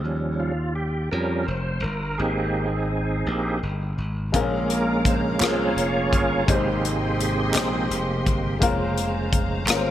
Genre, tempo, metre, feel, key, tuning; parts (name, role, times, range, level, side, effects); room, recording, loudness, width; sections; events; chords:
slow gospel; 56 BPM (dotted quarters); 6/8; straight; Ab major; A4 = 440 Hz
bright tonewheel organ; sustained chords; 0.0-9.9 s; C3 to Db5; -25 LUFS; right 2 dB; slow rotary speaker, chorus vibrato
glassy slap bass; bass; 0.0-9.9 s; F1 to F2; -27 LUFS; equal
warm upright piano; accompaniment; 4.3-9.9 s; Ab2 to C5; -26 LUFS; left 3 dB
warm studio string section; sustained chords; 4.3-9.9 s; Eb5 to C6; -34 LUFS; left 3 dB
modern studio drum kit; drums; 4.3-9.9 s; hi-hat, kick drum, rim click; -25 LUFS; left 1 dB
group handclap; percussion; 5.4-9.9 s; -29 LUFS; right 4 dB
moderate plate reverb, RT60 2.8 s; bright 1980s-style digital production; -21 LUFS; side -12 dB against mid
0.0-9.9 A section
tonewheel organ solo 0.0-9.9
0.1 Eb7; 2.2 Abmaj7; 4.3 Bbm7; 6.5 Abmaj7; 8.6 Bbm7/F